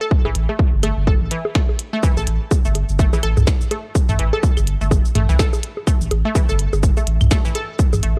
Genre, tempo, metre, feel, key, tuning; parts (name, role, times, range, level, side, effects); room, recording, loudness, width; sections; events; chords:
minimal techno; 125 BPM; 4/4; swing 58% on 16ths; A minor; A4 = 440 Hz
resonant blip pluck; riff; 0.0-8.1 s; E3 to A4; -29 LUFS; equal; chorus, sidechain pumping, tape echo
electronic kick drum; drums; 0.1-7.9 s; -19 LUFS; equal; overdrive
electronic bongos, claves and toms; percussion; 0.2-8.2 s; -25 LUFS; equal
saturated sub bass; bass; 0.3-8.1 s; G1 to C2; -21 LUFS; equal; tube saturation, sidechain pumping
minimal click drum kit; drums; 0.4-8.1 s; cabasa, hi-hat, snare drum; -29 LUFS; equal
digital ambience; dry, gritty hardware recording, cassette tape; -18 LUFS; mono
0.0-8.2 A section
0.0 A5